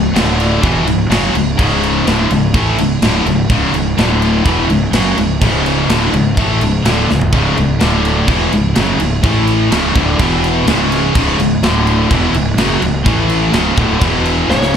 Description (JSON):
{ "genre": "heavy metal", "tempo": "126 BPM", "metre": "4/4", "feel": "straight", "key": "unclear", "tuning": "A4 = 440 Hz", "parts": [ { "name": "high-gain distorted guitar", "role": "riff", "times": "0.0-14.8 s", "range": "C#2 to A3", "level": "-19 LUFS", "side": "right 9 dB", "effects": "distortion, slapback echo" }, { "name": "high-gain distorted guitar", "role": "riff", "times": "0.0-14.8 s", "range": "C#2 to A3", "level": "-18 LUFS", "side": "equal", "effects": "distortion" }, { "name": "tight distorted guitar", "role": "riff", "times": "0.0-14.8 s", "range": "C#2 to A3", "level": "-18 LUFS", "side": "left 11 dB", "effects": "distortion" }, { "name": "fuzz fingered electric bass", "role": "bass", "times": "0.0-14.8 s", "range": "C#1 to A1", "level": "-18 LUFS", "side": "equal", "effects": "overdrive" }, { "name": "tight metal drum kit", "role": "drums", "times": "0.2-14.8 s", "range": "crash cymbal, kick drum, snare drum, toms", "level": "-17 LUFS", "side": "right 1 dB", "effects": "none" }, { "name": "high-gain lead guitar", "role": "melody", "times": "14.5-14.8 s", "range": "C#5", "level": "-20 LUFS", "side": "left 1 dB", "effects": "distortion" } ], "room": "light reverb", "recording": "live gig heard through the venue's PA, club reverb", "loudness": "-11 LUFS", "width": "side -8 dB against mid", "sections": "0.0-14.8 A section", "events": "drum fill 7.1, 14.5", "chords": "0.2 D5; 0.6 C#m; 4.0 D5; 4.5 C#m; 7.8 D5; 8.3 C#m; 9.2 A5; 9.7 C#5; 10.2 E5; 10.7 C#5; 11.6 D5; 12.1 C#m; 13.1 A5; 13.5 C#5; 14.0 E5" }